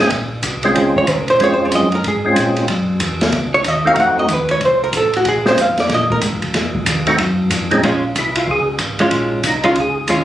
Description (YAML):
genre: soul jazz organ trio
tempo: 186 BPM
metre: 4/4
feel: swing 63% on 8ths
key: Bb minor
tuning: A4 = 440 Hz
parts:
  - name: percussive tonewheel organ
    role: melody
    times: 0.0-10.0 s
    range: Bb2 to Ab4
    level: -16 LUFS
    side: equal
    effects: slow rotary speaker, chorus vibrato
  - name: mellow tonewheel organ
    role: bass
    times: 0.0-10.2 s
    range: Ab1 to Bb2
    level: -23 LUFS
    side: equal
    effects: slow rotary speaker
  - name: open jazz drum kit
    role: drums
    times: 0.1-10.2 s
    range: hi-hat, kick drum, ride cymbal, snare drum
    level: -20 LUFS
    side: equal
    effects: none
  - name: archtop guitar, miked and amplified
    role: accompaniment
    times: 1.0-10.2 s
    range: Ab3 to Gb5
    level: -15 LUFS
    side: right 1 dB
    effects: none
room: moderate studio reverb, RT60 0.6 s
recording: recorded on a phone in the room, club reverb, compression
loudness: -13 LUFS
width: side -12 dB against mid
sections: 0.0-7.8 A section; 7.8-10.2 A section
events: hollow-body jazz guitar solo 0.0-7.8; tonewheel organ solo 7.8-10.2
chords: 0.0 Bbm7; 2.7 Gb5; 4.0 F7b9; 5.3 Bbm7; 6.5 F7(no3); 7.8 Bbm7